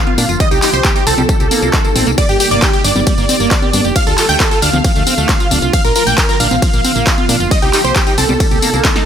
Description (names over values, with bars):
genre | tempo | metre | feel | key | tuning
uplifting trance | 135 BPM | 4/4 | straight | unclear | A4 = 440 Hz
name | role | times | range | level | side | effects
supersaw stab | melody | 0.0-9.1 s | G4 to G5 | -17 LUFS | right 1 dB | sidechain pumping, digital delay
wide unison pluck | second line | 0.0-9.1 s | G5 to G6 | -24 LUFS | moving between left 4 dB and right 7 dB | auto-pan, sidechain pumping, ping-pong delay
liquid acid bass | arpeggios | 0.1-9.0 s | F3 to G4 | -21 LUFS | right 4 dB | chorus, sidechain pumping, ping-pong delay
punchy analog drum machine | drums | 0.1-9.0 s | congas, handclaps, hi-hat, ride cymbal, snare drum, tambourine | -16 LUFS | left 1 dB | none
solid FM bass | bass | 0.2-8.8 s | D1 to Bb2 | -18 LUFS | equal | sidechain pumping
electronic kick drum | drums | 0.4-8.9 s | none | -15 LUFS | equal | overdrive
room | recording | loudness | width
light reverb | none | -10 LUFS | side -8 dB against mid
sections
0.0-9.1 A section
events
drum fill 8.8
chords
0.4 Cm7; 2.2 Gm; 4.0 Dm; 5.7 Bb; 7.5 Cm7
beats
| 0.40 0.85 1.29 1.74 | 2.18 2.62 3.07 3.51 | 3.96 4.40 4.85 5.29 | 5.74 6.18 6.62 7.07 | 7.51 7.96 8.40 8.85